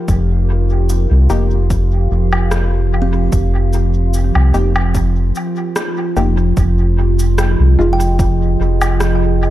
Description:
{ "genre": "ambient dub", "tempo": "74 BPM", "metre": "4/4", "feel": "swing 53% on 16ths", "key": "F minor", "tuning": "A4 = 439 Hz", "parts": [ { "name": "warbly tape-like pad", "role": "sustained chords", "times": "0.0-9.5 s", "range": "F3 to F5", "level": "-20 LUFS", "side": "right 1 dB", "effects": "chorus, built-in reverb" }, { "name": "round analog bass", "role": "bass", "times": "0.1-9.5 s", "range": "F1 to C2", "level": "-13 LUFS", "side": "equal", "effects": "none" }, { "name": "electronic cabasa, woodblock and rim click", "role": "drums", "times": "0.1-9.2 s", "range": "none", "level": "-23 LUFS", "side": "equal", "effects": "dub echo" }, { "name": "electronic kick drum", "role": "drums", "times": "0.1-8.4 s", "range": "none", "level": "-18 LUFS", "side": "equal", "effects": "overdrive" }, { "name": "filtered dub chord stab", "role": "stabs", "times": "1.3-8.1 s", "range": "Ab3 to G4", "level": "-24 LUFS", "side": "left 2 dB", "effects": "lush chorus, dub echo" }, { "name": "kalimba", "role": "arpeggios", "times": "3.0-9.5 s", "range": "C4 to G5", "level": "-28 LUFS", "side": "right 2 dB", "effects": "dub echo" } ], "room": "little or no reverb", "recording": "echo-heavy mix", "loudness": "-12 LUFS", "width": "side -14 dB against mid", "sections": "0.0-6.6 A section; 6.6-9.5 B section", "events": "none", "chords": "0.0 Eb/F; 6.6 Fm7" }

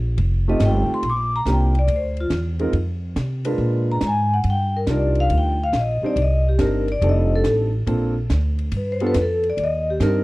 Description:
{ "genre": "jazz, small-group swing and bop", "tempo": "140 BPM", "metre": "4/4", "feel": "swing 67% on 8ths", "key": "Bb major", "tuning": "A4 = 440 Hz", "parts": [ { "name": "upright bass", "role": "bass", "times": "0.0-10.2 s", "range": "F1 to C3", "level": "-20 LUFS", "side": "equal", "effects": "none" }, { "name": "compact cocktail drum kit", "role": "drums", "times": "0.2-10.1 s", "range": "hi-hat, kick drum, ride cymbal, snare drum", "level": "-31 LUFS", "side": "right 1 dB", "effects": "none" }, { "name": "vibraphone with medium hard mallets", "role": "melody", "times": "0.5-10.2 s", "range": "F4 to D6", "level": "-22 LUFS", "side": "left 2 dB", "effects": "none" }, { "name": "warm grand piano", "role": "accompaniment", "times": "0.5-10.2 s", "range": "G3 to C5", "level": "-24 LUFS", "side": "right 1 dB", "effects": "none" } ], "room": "small room ambience", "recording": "dry, close 1970s-style studio recording", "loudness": "-18 LUFS", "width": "side -20 dB against mid", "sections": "0.0-1.0 A section; 1.0-10.2 A section", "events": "vibraphone solo 0.0-10.2", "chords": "0.2 F9; 1.0 Bb6; 2.7 Fm; 3.6 Bb7b9; 4.5 Ebmaj9; 6.2 Cm7; 7.0 F13; 7.9 Bbmaj7; 8.7 G7; 9.6 Cm7" }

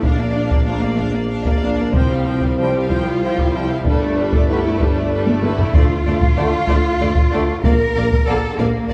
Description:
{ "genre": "cinematic, epic orchestral film score", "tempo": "63 BPM (dotted quarters)", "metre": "6/8", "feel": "straight", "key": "unclear", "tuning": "A4 = 439 Hz", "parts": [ { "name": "rich symphonic violin section", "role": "melody", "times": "0.0-8.9 s", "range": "A4 to G5", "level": "-34 LUFS", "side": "equal", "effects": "none" }, { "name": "rich symphonic violin section", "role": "second line", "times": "0.0-8.9 s", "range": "G4 to F5", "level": "-32 LUFS", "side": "equal", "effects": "none" }, { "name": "rich symphonic viola section", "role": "accompaniment", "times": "0.0-8.7 s", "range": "F3 to D4", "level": "-29 LUFS", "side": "equal", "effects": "none" }, { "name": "mellow French horn section", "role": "sustained chords", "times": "0.0-8.9 s", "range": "A3 to Bb4", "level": "-27 LUFS", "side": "equal", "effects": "none" }, { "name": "mellow tuba", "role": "bass", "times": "0.0-8.9 s", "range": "G1 to D2", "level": "-26 LUFS", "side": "equal", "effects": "none" }, { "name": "rich symphonic double bass section", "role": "bass", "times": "0.0-8.9 s", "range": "G1 to D2", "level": "-28 LUFS", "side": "equal", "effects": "none" }, { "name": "warm symphonic cello section", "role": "bass", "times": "0.0-8.9 s", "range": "A3 to Bb4", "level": "-26 LUFS", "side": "equal", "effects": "none" }, { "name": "taiko ensemble", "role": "drums", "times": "0.0-8.9 s", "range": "none", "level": "-21 LUFS", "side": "equal", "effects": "none" }, { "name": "bright trombone section", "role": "sustained chords", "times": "0.7-8.4 s", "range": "D3 to Bb3", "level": "-30 LUFS", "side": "equal", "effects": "none" }, { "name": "timpani", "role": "percussion", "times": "5.7-6.6 s", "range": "D3", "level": "-32 LUFS", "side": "equal", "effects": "none" } ], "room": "wet recital hall reverb, RT60 1.4 s", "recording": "recorded in a church or concert hall", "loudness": "-17 LUFS", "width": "mono", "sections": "0.0-8.9 A section", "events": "drum fill 5.3-5.7", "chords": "0.0 Bb; 1.9 Csus4; 3.8 Gadd9; 5.7 Dm; 7.6 Bb" }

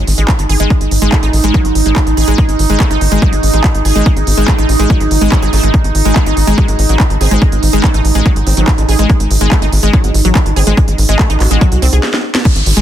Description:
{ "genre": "psychedelic trance", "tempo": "143 BPM", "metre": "4/4", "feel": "straight", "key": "unclear", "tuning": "A4 = 439 Hz", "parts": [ { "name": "evolving wavetable pad", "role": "sustained chords", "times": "0.1-12.8 s", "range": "D#4 to G#4", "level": "-19 LUFS", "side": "right 7 dB", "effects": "chorus, built-in reverb, sidechain pumping" }, { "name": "tight sequencer bass", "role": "bass", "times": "0.0-12.8 s", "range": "G#1 to B#1", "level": "-12 LUFS", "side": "equal", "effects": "none" }, { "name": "warbly tape-like pad", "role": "texture", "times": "0.0-12.8 s", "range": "D#4 to D#5", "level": "-24 LUFS", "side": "left 2 dB", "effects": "chorus, built-in reverb, sidechain pumping" }, { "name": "techno drum kit", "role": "drums", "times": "0.1-12.8 s", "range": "crash cymbal, handclaps, hi-hat, snare drum", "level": "-19 LUFS", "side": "right 2 dB", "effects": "none" }, { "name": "wide unison pluck", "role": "riff", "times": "0.2-12.8 s", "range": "F#3 to G#4", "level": "-18 LUFS", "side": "left 2 dB", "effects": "auto-pan, sidechain pumping, tape echo" }, { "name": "electronic kick drum", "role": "drums", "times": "0.3-12.5 s", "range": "none", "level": "-11 LUFS", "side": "equal", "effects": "none" }, { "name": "formant-sweep wobble bass", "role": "second line", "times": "7.2-11.8 s", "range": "G#3 to F#4", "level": "-29 LUFS", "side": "right 5 dB", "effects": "none" }, { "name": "downlifter", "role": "sound effects", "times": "12.5-12.8 s", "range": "none", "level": "-20 LUFS", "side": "right 3 dB", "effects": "none" } ], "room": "little or no reverb", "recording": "dense, heavily limited modern master", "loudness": "-9 LUFS", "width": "side -11 dB against mid", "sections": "0.0-12.5 A section", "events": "fade-in on ambient pad 0.0-12.5; drum fill 12.0-12.5; stop 12.0-12.5", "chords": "0.0 G#5" }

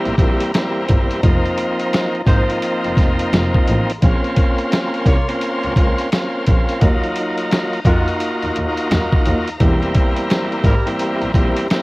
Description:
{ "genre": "hip hop, boom-bap hip-hop", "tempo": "86 BPM", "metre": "4/4", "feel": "swing 63% on 16ths", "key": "unclear", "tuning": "A4 = 440 Hz", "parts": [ { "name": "bright tonewheel organ", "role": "accompaniment", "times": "0.0-11.8 s", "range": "E2 to Gb4", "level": "-20 LUFS", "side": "equal", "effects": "overdrive, fast rotary speaker, cassette tape, high-pass filter, low-pass filter" }, { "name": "warm symphonic string section", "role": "sustained chords", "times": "0.0-11.8 s", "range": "Eb4 to C6", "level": "-28 LUFS", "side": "left 1 dB", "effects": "high-pass filter, low-pass filter, cassette tape" }, { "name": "clear double bass", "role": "bass", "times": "0.1-11.4 s", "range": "E1 to F2", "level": "-21 LUFS", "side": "equal", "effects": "none" }, { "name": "dusty soul sampler-style drum kit", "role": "drums", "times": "0.1-11.8 s", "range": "hi-hat, kick drum, snare drum", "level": "-16 LUFS", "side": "equal", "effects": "cassette tape" }, { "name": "dark trumpet section", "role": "stabs", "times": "2.3-10.9 s", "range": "G3 to Db5", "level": "-29 LUFS", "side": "right 1 dB", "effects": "none" } ], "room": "studio reverb", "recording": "home recording on cassette, vinyl crackle", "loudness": "-15 LUFS", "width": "side -22 dB against mid", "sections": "0.0-11.8 A section", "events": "none", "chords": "0.0 C7; 1.2 F7sus4; 4.0 Bbmadd9; 6.8 Ebmadd9; 9.6 C7/E" }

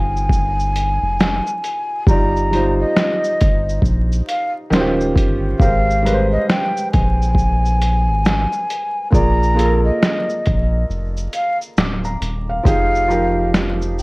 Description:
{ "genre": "lo-fi hip hop", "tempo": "68 BPM", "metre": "4/4", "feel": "swing 61% on 16ths", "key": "F dorian", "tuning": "A4 = 440 Hz", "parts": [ { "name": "breathy hollow jazz flute", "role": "melody", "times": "0.0-14.0 s", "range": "Eb5 to Bb5", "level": "-20 LUFS", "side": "equal", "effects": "low-pass filter, tape echo" }, { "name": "felt-muted upright piano", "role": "accompaniment", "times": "0.0-14.0 s", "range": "Eb3 to D6", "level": "-22 LUFS", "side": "right 1 dB", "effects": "low-pass filter" }, { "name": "soft dub sub bass", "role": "bass", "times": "0.0-14.0 s", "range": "D1 to Bb1", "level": "-19 LUFS", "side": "equal", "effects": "none" }, { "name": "lo-fi sampler-style drum kit", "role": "drums", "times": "0.2-14.0 s", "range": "finger snaps, hi-hat, kick drum, shaker, snare drum", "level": "-18 LUFS", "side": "equal", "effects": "overdrive" } ], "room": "light reverb", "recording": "worn, warbling old tape, cassette tape, vinyl crackle, warbly pitch drift", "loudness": "-15 LUFS", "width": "side -24 dB against mid", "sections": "0.0-12.7 A section; 12.7-14.0 B section", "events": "break 10.9-12.7", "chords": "0.0 Fm11; 2.1 Ebmaj7/G; 4.7 Eb13; 5.6 Abmaj9; 9.1 Bb7; 12.7 Fm9" }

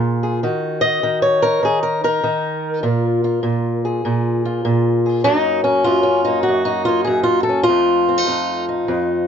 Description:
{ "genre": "acoustic country blues, solo or duo", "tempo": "100 BPM", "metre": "4/4", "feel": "swing 66% on 8ths", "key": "Bb minor", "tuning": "A4 = 440 Hz", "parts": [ { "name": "fingerpicked swing-style acoustic guitar", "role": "solo", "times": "0.0-9.3 s", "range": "F2 to Eb5", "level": "-15 LUFS", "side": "equal", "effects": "none" } ], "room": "light reverb", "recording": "dark, warm production, nothing above 7.7 kHz", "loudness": "-15 LUFS", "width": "side -7 dB against mid", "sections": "0.0-9.3 A section", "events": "none", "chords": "0.4 Ebm7; 2.8 Bb5; 5.2 Gbmaj7; 7.7 F7" }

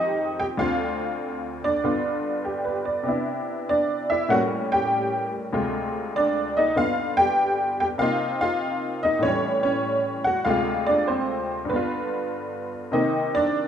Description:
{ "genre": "solo jazz", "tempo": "97 BPM", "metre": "4/4", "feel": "swing 67% on 8ths", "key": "C minor", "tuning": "A4 = 443 Hz", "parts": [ { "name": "honky-tonk upright piano", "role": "solo", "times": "0.0-13.7 s", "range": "D2 to G5", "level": "-22 LUFS", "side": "equal", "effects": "none" } ], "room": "moderate large studio reverb, RT60 1.4 s", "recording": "minimal, uncompressed stereo recording", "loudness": "-22 LUFS", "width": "side -8 dB against mid", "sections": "0.0-12.9 A section", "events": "none", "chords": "0.0 Fm9; 0.6 Dm7; 1.8 G7; 3.1 Cmaj9; 4.3 A7b9; 5.5 Dm7b5; 6.8 G7; 8.0 Cm7; 9.2 A7; 10.5 Dm7b5; 11.7 G7; 12.9 Cm9" }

